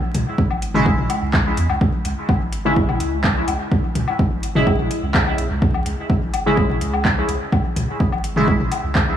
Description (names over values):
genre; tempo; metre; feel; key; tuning
dub techno; 126 BPM; 4/4; straight; C# minor; A4 = 440 Hz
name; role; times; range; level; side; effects
pure sine sub bass; bass; 0.1-9.1 s; G#1 to E2; -24 LUFS; equal; sidechain pumping
deep house drum kit; drums; 0.1-9.1 s; handclaps, hi-hat; -26 LUFS; right 1 dB; overdrive, studio reverb, dub echo
electronic toms and woodblock; percussion; 0.1-8.8 s; none; -26 LUFS; left 4 dB; overdrive, sidechain pumping on toms, studio reverb, sidechain pumping on perc, dub echo
electronic kick drum; drums; 0.4-9.1 s; none; -20 LUFS; equal; overdrive, studio reverb
resonant sweep polysynth; stabs; 0.7-8.5 s; C#3 to E4; -22 LUFS; equal; chorus, phaser, cassette tape, sidechain pumping, dub echo
room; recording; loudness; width
moderate huge ambient reverb, RT60 4.5 s; vinyl crackle, studio ambience; -17 LUFS; side -10 dB against mid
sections
0.0-9.2 A section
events
none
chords
0.0 C#5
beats
0.38 0.86 1.34 | 1.81 2.29 2.76 3.24 | 3.72 4.19 4.67 5.14 | 5.62 6.10 6.57 7.05 | 7.53 8.00 8.48 8.96